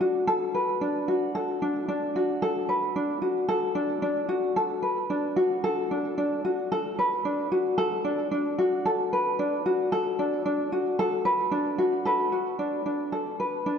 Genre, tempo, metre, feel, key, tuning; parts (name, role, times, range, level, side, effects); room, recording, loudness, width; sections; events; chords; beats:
folktronica; 112 BPM; 4/4; straight; D major; A4 = 437 Hz
tenor ukulele; solo; 0.0-13.8 s; D4 to B4; -24 LUFS; equal; digital delay
wet concert hall reverb, RT60 2.5 s; dark, warm production; -24 LUFS; side -7 dB against mid
0.0-12.1 A section; 12.1-13.8 B section
0.0 D6
0.28 0.82 | 1.35 1.89 2.42 2.96 | 3.50 4.03 4.57 5.10 | 5.64 6.17 6.71 7.25 | 7.78 8.32 8.85 9.39 | 9.92 10.46 10.99 11.53 | 12.07 12.60 13.14 13.67